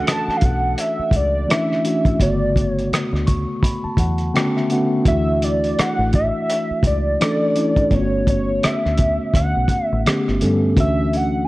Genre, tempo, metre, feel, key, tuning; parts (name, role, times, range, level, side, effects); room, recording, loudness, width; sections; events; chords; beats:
R&B, neo-soul; 84 BPM; 4/4; swing 59% on 16ths; D major; A4 = 439 Hz
hollow square lead; melody; 0.0-11.5 s; C#5 to A5; -22 LUFS; equal; chorus
mellow tine electric piano; accompaniment; 0.0-11.5 s; C#3 to C#6; -21 LUFS; equal; medium stereo tremolo
deep dub fingered electric bass; bass; 0.0-11.4 s; G1 to G2; -22 LUFS; equal; transformer saturation
cloth-damped thuddy drum kit; drums; 0.1-11.3 s; hi-hat, kick drum, rim click; -20 LUFS; equal
light reverb, small room ambience; worn, warbling old tape, cassette tape, warbly pitch drift; -16 LUFS; side -19 dB against mid
0.0-11.5 A section
tine electric piano fill 2.9-5.1
0.0 Dmaj9; 2.2 Gmaj9#11; 5.1 Dmaj9; 7.9 Gmaj9#11; 10.8 Dmaj9
0.06 0.77 1.49 | 2.20 2.91 3.63 4.34 | 5.06 5.77 6.49 7.20 | 7.91 8.63 9.34 10.06 | 10.77